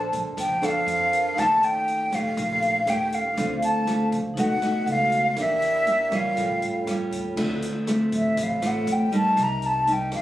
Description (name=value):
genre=bossa nova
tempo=120 BPM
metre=4/4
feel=straight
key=D minor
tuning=A4 = 439 Hz
part: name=breathy hollow jazz flute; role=melody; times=0.0-10.2 s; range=E5 to Bb5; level=-22 LUFS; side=equal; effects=none
part: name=nylon-string guitar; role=accompaniment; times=0.0-10.2 s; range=A2 to C5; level=-27 LUFS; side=equal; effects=none
part: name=vibraphone with medium hard mallets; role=accompaniment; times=0.0-7.4 s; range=D4 to A5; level=-32 LUFS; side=right 4 dB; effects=none
part: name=upright bass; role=bass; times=0.0-10.2 s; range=A1 to Bb2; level=-33 LUFS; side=equal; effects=none
part: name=open jazz drum kit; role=drums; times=0.1-10.2 s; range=crash cymbal, hi-hat, kick drum, rim click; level=-37 LUFS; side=equal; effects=none
room=moderate studio reverb, RT60 0.8 s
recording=recorded on a phone in the room, club reverb, compression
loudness=-21 LUFS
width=side -14 dB against mid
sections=0.0-7.4 A section; 7.4-10.2 B section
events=flute solo 7.4-10.2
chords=0.0 Bbmaj9; 1.4 Eb7#11; 3.4 Dm7; 4.4 B7; 5.4 Em7b5; 6.4 Aaug7; 7.4 Dm7; 9.4 Cm7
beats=0.37 0.87 | 1.37 1.87 2.37 2.87 | 3.37 3.87 4.37 4.87 | 5.37 5.87 6.37 6.87 | 7.37 7.87 8.37 8.87 | 9.37 9.87